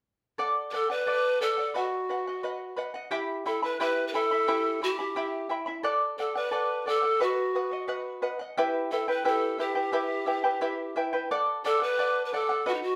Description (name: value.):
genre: andean folk, Andean ensemble.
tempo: 88 BPM.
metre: 2/4.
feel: straight.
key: E minor.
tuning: A4 = 440 Hz.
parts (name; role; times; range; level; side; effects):
charango; accompaniment; 0.4-13.0 s; E4 to B5; -31 LUFS; equal; none.
breathy pan flute; melody; 0.7-13.0 s; D#4 to B4; -30 LUFS; equal; none.
room: wet studio reverb, RT60 0.7 s.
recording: band playing live in one room.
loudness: -28 LUFS.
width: mono.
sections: 0.4-11.3 A section; 11.3-13.0 A section.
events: none.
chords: 0.4 D; 1.8 B; 3.1 Em; 5.8 D; 7.2 B; 8.6 Em; 11.3 D.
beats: | 0.39 1.07 | 1.75 2.44 | 3.12 3.80 | 4.48 5.16 | 5.85 6.53 | 7.21 7.89 | 8.57 9.25 | 9.94 10.62 | 11.30 11.98 | 12.66.